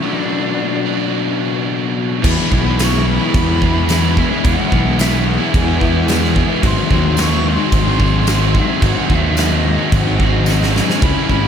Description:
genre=rock, shoegaze and dream pop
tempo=109 BPM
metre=4/4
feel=straight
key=E major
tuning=A4 = 440 Hz
part: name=bright concert flute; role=melody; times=0.0-11.5 s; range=D4 to C#6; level=-25 LUFS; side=equal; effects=tape echo
part: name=biting overdriven guitar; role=riff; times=0.0-11.5 s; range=E2 to G#4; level=-20 LUFS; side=right 8 dB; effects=reverse reverb
part: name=overdriven semi-hollow guitar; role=riff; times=0.0-11.5 s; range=G#2 to F#4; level=-19 LUFS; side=left 6 dB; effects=lush chorus
part: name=fuzz fingered electric bass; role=bass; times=2.2-11.5 s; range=G#1 to E2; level=-17 LUFS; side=right 1 dB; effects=overdrive
part: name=huge arena drum kit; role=drums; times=2.2-11.4 s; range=crash cymbal, kick drum, snare drum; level=-18 LUFS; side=right 1 dB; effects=none
part: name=tambourine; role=percussion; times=2.8-10.6 s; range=none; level=-33 LUFS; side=left 11 dB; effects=none
room=moderate huge ambient reverb, RT60 8.4 s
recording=dreamy mix soaked in reverb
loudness=-13 LUFS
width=side -8 dB against mid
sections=0.0-2.2 A section; 2.2-11.5 B section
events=break 0.0-2.2; drum fill 10.5-11.0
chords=0.0 Bm; 2.2 E; 6.6 G#7

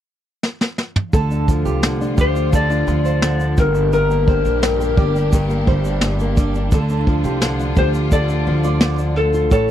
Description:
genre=acoustic pop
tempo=86 BPM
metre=4/4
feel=straight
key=D minor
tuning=A4 = 440 Hz
part: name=vintage brush drum kit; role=drums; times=0.4-9.7 s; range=kick drum, shaker, snare drum, toms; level=-16 LUFS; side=equal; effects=none
part: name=flamenco guitar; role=accompaniment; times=1.1-9.7 s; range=G2 to Bb4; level=-23 LUFS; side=left 1 dB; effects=none
part: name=warm studio string section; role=sustained chords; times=1.1-9.7 s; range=A3 to G4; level=-28 LUFS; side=left 2 dB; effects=none
part: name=fingerpicked steel-string acoustic guitar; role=arpeggios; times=1.1-9.7 s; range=G4 to D5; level=-28 LUFS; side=right 9 dB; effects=none
part: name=upright bass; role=bass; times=1.1-9.7 s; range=G1 to D2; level=-19 LUFS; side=equal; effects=none
part: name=electric slide guitar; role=melody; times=2.2-9.7 s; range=A4 to D5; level=-20 LUFS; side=left 4 dB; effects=none
room=little or no reverb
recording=dry, close 1970s-style studio recording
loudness=-15 LUFS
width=side -11 dB against mid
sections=0.0-1.1 A section; 1.1-9.7 B section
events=drum fill 0.4-1.1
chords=0.0 N.C.; 1.1 Dm; 3.6 Gm; 6.7 Dm

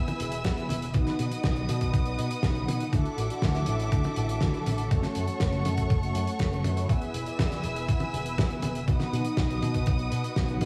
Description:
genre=italo disco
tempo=121 BPM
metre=4/4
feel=straight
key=unclear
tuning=A4 = 439 Hz
part: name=warm studio string section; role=sustained chords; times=0.0-10.7 s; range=A4 to E6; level=-38 LUFS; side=equal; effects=none
part: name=mellow synth brass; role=stabs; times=0.0-10.7 s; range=A3 to D#5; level=-36 LUFS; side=equal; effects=chorus, digital delay
part: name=fingered electric bass with an envelope filter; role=bass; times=0.0-10.7 s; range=E1 to B2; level=-33 LUFS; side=equal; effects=digital delay
part: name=damped 70s drum kit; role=drums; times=0.1-10.7 s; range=hi-hat, snare drum, toms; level=-35 LUFS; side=equal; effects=studio reverb, gated reverb
part: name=electronic kick drum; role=drums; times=0.4-10.5 s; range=none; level=-30 LUFS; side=equal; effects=overdrive, studio reverb
room=light reverb, small room ambience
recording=none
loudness=-28 LUFS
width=mono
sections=0.0-10.7 A section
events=none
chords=0.0 E; 0.9 B; 2.9 Dadd9; 4.9 F#m; 6.9 E; 8.9 B

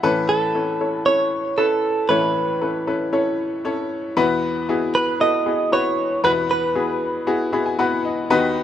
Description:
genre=pop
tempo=116 BPM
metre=4/4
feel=straight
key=unclear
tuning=A4 = 440 Hz
part: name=clear upright piano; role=accompaniment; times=0.0-8.6 s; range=D#2 to B5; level=-20 LUFS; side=left 2 dB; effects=none
part: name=direct-recorded clean electric guitar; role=melody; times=0.3-8.0 s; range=A4 to D#5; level=-20 LUFS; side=right 3 dB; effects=lush chorus
room=light reverb, small room ambience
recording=rough home demo mix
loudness=-18 LUFS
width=side -10 dB against mid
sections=0.0-4.2 A section; 4.2-8.6 B section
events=upright piano fill 7.3-8.3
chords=0.0 Aadd9; 4.2 Esus2

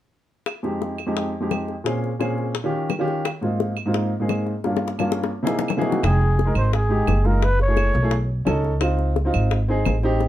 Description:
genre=Afro-Cuban jazz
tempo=172 BPM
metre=4/4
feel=straight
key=F minor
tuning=A4 = 443 Hz
part: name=bongos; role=percussion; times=0.5-10.3 s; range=none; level=-27 LUFS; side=left 7 dB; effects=none
part: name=claves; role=percussion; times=0.5-10.0 s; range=none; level=-33 LUFS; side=right 8 dB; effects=none
part: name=warm baby grand piano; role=accompaniment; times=0.6-10.2 s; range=F2 to G5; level=-23 LUFS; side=equal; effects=none
part: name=breathy trumpet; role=melody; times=5.9-8.3 s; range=Gb4 to Db5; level=-25 LUFS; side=equal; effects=none
part: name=upright bass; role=bass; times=6.0-10.3 s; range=F1 to C#2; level=-20 LUFS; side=equal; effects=none
room=light reverb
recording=dark, warm production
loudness=-19 LUFS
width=side -13 dB against mid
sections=0.5-6.0 A section; 6.0-10.3 B section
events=drum fill 4.6-6.0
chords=0.5 Fm7; 1.9 Bbm7; 2.6 Eb7; 3.3 Ab69; 4.6 Gm7b5; 5.3 C7alt; 6.0 Fm7; 7.4 Gbm7; 8.1 B9; 8.8 Dbmaj7

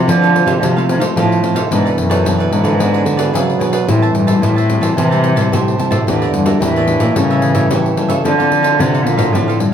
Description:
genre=samba and choro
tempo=110 BPM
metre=4/4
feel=straight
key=unclear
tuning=A4 = 438 Hz
part: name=warm cello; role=melody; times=0.0-9.7 s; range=F#2 to D3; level=-16 LUFS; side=left 2 dB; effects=none
part: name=mellow trombone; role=second line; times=0.0-9.7 s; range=C3 to F#3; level=-19 LUFS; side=right 5 dB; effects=none
part: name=cavaquinho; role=accompaniment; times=0.0-9.6 s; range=D4 to A5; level=-23 LUFS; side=right 4 dB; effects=none
part: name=nylon-string guitar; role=accompaniment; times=0.0-9.7 s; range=A2 to C#5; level=-22 LUFS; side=left 4 dB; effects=none
part: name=nylon-string guitar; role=bass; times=0.1-9.7 s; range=E2 to F3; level=-19 LUFS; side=right 1 dB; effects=none
part: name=pandeiro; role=percussion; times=0.1-9.7 s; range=none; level=-21 LUFS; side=left 3 dB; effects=none
room=moderate studio reverb, RT60 0.7 s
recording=none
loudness=-12 LUFS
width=side -8 dB against mid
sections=0.0-9.7 A section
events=none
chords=0.0 Fmaj7; 1.7 Bm9; 2.8 E7; 3.9 Am7; 6.1 Em7b5; 7.2 A7b9; 8.2 Dm9

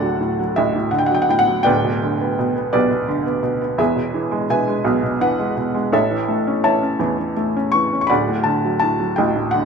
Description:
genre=classical, lyrical solo piano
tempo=84 BPM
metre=3/4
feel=rubato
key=D major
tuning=A4 = 440 Hz
part: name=felt-muted upright piano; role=solo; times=0.0-9.7 s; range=D1 to C#6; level=-16 LUFS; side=equal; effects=none
room=moderate studio reverb, RT60 0.8 s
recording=none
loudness=-16 LUFS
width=side -6 dB against mid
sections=0.0-9.7 A section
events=none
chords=0.0 D; 1.7 G/D; 3.8 E; 5.9 A; 8.1 D

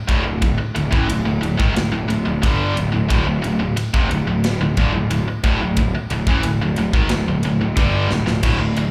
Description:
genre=hard rock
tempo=90 BPM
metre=4/4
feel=straight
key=unclear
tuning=A4 = 440 Hz
part: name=distorted electric guitar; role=riff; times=0.1-8.9 s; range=D2 to G3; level=-31 LUFS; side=equal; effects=none
part: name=tight distorted guitar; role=riff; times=0.1-8.9 s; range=D2 to G3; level=-23 LUFS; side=equal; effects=distortion, slapback echo
part: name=fuzz picked electric bass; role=bass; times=0.1-8.9 s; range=D1 to A1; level=-24 LUFS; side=equal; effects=overdrive
part: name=tight metal drum kit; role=drums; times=0.1-8.9 s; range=crash cymbal, kick drum, ride cymbal, snare drum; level=-25 LUFS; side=equal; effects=none
room=studio ambience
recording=live gig heard through the venue's PA, club reverb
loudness=-19 LUFS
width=mono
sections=0.0-8.9 A section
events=drum fill 8.1-8.4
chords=0.0 D5

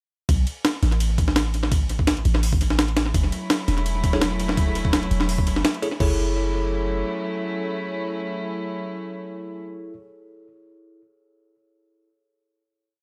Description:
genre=drum and bass, jungle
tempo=168 BPM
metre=4/4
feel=swing 54% on 16ths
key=F# minor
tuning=A4 = 440 Hz
part: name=warm 808-style bass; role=bass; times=0.3-7.0 s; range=E1 to B1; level=-26 LUFS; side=equal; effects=none
part: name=breakbeat sampler-style drum kit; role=drums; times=0.3-6.1 s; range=crash cymbal, hi-hat, kick drum, ride cymbal, snare drum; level=-25 LUFS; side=equal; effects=tape echo
part: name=dark chamber string section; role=sustained chords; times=3.1-9.6 s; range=F#3 to E4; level=-32 LUFS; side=equal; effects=none
part: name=bell-like tine electric piano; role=stabs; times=4.1-9.9 s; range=E4 to C#5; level=-32 LUFS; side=equal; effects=vintage 12-bit sampler grit, dub echo
room=light reverb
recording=echo-heavy mix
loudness=-23 LUFS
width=mono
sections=0.3-6.0 drop; 6.0-8.9 final chord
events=drop 0.3-6.0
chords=0.3 N.C.; 3.1 F#m7

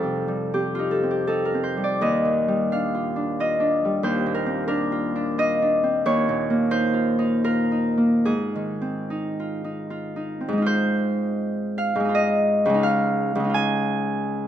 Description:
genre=classical, solo harp piece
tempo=69-96 BPM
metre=3/4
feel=rubato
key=Ab major from 6.0 s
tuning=A4 = 440 Hz
part: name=Celtic harp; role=solo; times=0.0-14.5 s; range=Db2 to Ab5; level=-20 LUFS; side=equal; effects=none
room=moderate recital hall reverb, RT60 1.7 s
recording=close, detailed microphones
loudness=-20 LUFS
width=side -10 dB against mid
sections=0.0-10.7 A section; 10.7-14.5 B section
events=none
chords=0.0 F9; 2.0 Ebmaj9; 4.0 Cm11/Eb; 6.0 Ebsus2; 8.2 Ab6; 12.8 Dbadd9

